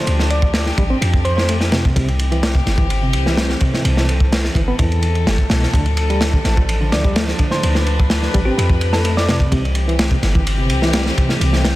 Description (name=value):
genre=breakbeat, breaks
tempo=127 BPM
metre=4/4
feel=straight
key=D dorian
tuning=A4 = 442 Hz
part: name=thumb-piano-like synth pluck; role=melody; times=0.0-1.4, 6.9-9.4 s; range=G4 to D5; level=-25 LUFS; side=equal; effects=chorus, AM radio sound, digital delay
part: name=rich chamber string section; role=sustained chords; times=0.0-11.8 s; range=E3 to B4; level=-24 LUFS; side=left 1 dB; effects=sidechain pumping
part: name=overdriven reed electric piano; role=riff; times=0.0-11.6 s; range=B2 to C4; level=-23 LUFS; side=equal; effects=fast tremolo, vintage 12-bit sampler grit, digital delay
part: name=warm 808-style bass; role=bass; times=0.1-11.8 s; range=G1 to F2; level=-18 LUFS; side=equal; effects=none
part: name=crunchy breakbeat drum kit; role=drums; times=0.1-11.8 s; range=kick drum, ride cymbal, snare drum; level=-18 LUFS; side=equal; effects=none
room=little or no reverb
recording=none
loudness=-14 LUFS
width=side -17 dB against mid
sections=0.0-11.8 A section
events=none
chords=0.0 Dm; 2.0 C; 5.7 Dm; 9.5 C